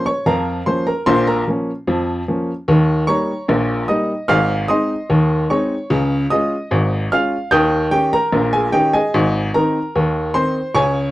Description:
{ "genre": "ragtime piano", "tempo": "74 BPM", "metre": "2/4", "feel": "straight", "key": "Ab major", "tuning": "A4 = 440 Hz", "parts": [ { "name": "clear upright piano", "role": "solo", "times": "0.0-11.1 s", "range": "Ab1 to G6", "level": "-15 LUFS", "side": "equal", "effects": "none" } ], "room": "light reverb", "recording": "dry, close 1970s-style studio recording", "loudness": "-15 LUFS", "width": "side -16 dB against mid", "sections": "0.0-11.1 A section", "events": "none", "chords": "0.0 Bbm; 2.7 Eb7; 4.3 Ab; 5.9 Db; 7.5 Eb7; 9.1 Ab" }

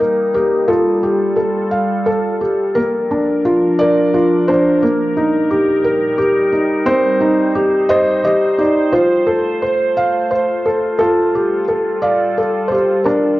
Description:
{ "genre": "children's music, lullaby", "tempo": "58 BPM (dotted quarters)", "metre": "6/8", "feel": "straight", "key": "unclear", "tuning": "A4 = 441 Hz", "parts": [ { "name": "felt-muted upright piano", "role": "melody", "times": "0.0-13.4 s", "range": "Bb3 to F5", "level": "-13 LUFS", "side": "equal", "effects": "none" }, { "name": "evolving wavetable pad", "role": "sustained chords", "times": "0.0-13.4 s", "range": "Bb2 to D5", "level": "-22 LUFS", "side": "equal", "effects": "chorus, built-in reverb" } ], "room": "wet recital hall reverb, RT60 1.7 s", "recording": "dark, warm production, nothing above 7.6 kHz", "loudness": "-13 LUFS", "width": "side -17 dB against mid", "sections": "0.0-2.8 A section; 2.8-13.4 B section", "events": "none", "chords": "0.0 Eb; 0.7 Fadd9; 2.8 Bb; 4.8 Eb/Bb; 6.9 Cm; 8.9 F; 11.0 Fadd9" }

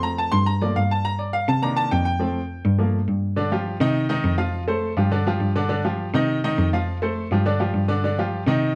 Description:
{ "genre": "latin, salsa", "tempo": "206 BPM", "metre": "4/4", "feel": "straight", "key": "G minor", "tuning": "A4 = 441 Hz", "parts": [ { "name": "clear upright piano", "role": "accompaniment", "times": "0.0-8.7 s", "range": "D3 to C6", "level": "-26 LUFS", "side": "equal", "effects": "none" }, { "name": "rich cello", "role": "bass", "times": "0.0-8.8 s", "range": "F2 to C3", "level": "-25 LUFS", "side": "equal", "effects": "none" } ], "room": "light reverb", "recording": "dark, warm production", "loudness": "-22 LUFS", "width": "mono", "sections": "0.0-3.4 A section; 3.4-8.8 B section", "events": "upright piano solo 0.0-3.4", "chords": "0.5 Gm7; 1.6 Cm7; 2.2 F; 2.8 Gm7; 3.4 G5; 4.0 Cm; 4.5 F; 5.1 G5; 6.3 Cm; 6.9 F; 7.5 G5" }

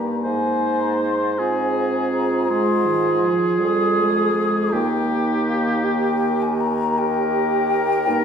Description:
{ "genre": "classical, slow romantic movement for wind quintet", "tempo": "54 BPM (dotted quarters)", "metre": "12/8", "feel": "rubato", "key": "Ab major", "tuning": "A4 = 443 Hz", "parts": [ { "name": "mellow hollow concert flute", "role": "melody", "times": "0.0-8.2 s", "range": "F5 to Eb6", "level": "-24 LUFS", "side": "left 6 dB", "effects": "none" }, { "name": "mellow French horn", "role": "accompaniment", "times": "0.0-8.2 s", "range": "Eb3 to C4", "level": "-25 LUFS", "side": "equal", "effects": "none" }, { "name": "warm bassoon", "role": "bass", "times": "0.0-8.2 s", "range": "Eb2 to Ab2", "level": "-25 LUFS", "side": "right 2 dB", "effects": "none" }, { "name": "warm oboe", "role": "second line", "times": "0.2-8.2 s", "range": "G4 to C5", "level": "-26 LUFS", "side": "left 1 dB", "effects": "none" }, { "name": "dark clarinet", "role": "accompaniment", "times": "0.2-8.2 s", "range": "Eb4 to G4", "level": "-24 LUFS", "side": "right 5 dB", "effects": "none" } ], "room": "wet recital hall reverb, RT60 1.3 s", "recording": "heard from further back in the room", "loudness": "-18 LUFS", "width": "side -7 dB against mid", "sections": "0.0-8.2 A section", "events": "none", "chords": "0.2 Ab; 4.7 Eb" }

